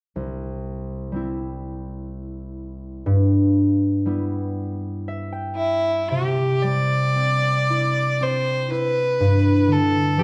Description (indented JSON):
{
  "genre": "celtic folk, Celtic slow air",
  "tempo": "56-64 BPM",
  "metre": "3/4",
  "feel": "rubato",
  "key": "C major",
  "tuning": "A4 = 440 Hz",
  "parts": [
    { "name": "concert harp", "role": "accompaniment", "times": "0.2-10.2 s", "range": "C2 to G5", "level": "-24 LUFS", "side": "equal", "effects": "none" },
    { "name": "rich fiddle", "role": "melody", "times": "5.6-10.2 s", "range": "E4 to D5", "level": "-24 LUFS", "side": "equal", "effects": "none" }
  ],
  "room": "wet scoring stage reverb, RT60 1.5 s",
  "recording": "dark, warm production",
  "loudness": "-22 LUFS",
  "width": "mono",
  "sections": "0.1-6.1 A section; 6.1-10.2 B section",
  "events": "harp fill 4.6-6.1",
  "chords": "0.1 C; 3.1 G6; 6.1 C; 9.2 G6",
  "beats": "| 0.15 1.15 2.10 | 3.06 4.05 5.06 | 6.10 7.16 8.20 | 9.20 10.17"
}